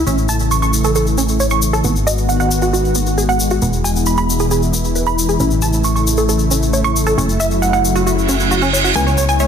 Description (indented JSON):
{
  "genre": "uplifting trance",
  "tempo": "135 BPM",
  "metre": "4/4",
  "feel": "straight",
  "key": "unclear",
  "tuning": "A4 = 436 Hz",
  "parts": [
    { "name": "lush unison pad", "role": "sustained chords", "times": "0.0-9.5 s", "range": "B2 to F#4", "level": "-18 LUFS", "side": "left 1 dB", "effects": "chorus" },
    { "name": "tight sequenced synth", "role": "arpeggios", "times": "0.0-9.5 s", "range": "B3 to C#6", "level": "-19 LUFS", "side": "right 3 dB", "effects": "chorus, cassette tape, ping-pong delay" },
    { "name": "solid FM bass", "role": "bass", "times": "0.0-9.5 s", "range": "E1 to C#2", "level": "-18 LUFS", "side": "equal", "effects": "none" },
    { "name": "tube shaker", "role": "percussion", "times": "0.1-9.5 s", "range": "none", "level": "-23 LUFS", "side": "left 4 dB", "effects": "none" },
    { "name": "reverse cymbal", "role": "sound effects", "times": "8.2-9.0 s", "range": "none", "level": "-19 LUFS", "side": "right 5 dB", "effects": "none" },
    { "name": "wide unison pluck", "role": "melody", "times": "9.0-9.5 s", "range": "C#5 to G#5", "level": "-17 LUFS", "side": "left 1 dB", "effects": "ping-pong delay" }
  ],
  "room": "light reverb, digital ambience",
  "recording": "dense, heavily limited modern master",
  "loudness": "-13 LUFS",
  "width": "side -8 dB against mid",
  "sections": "0.0-9.5 A section",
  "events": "filter sweep on analog synth pad 0.0-9.5; reverse cymbal 8.2-9.0",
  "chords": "0.1 A; 1.8 G#m7; 3.6 E; 5.4 A; 7.2 F#m7; 9.0 C#m7"
}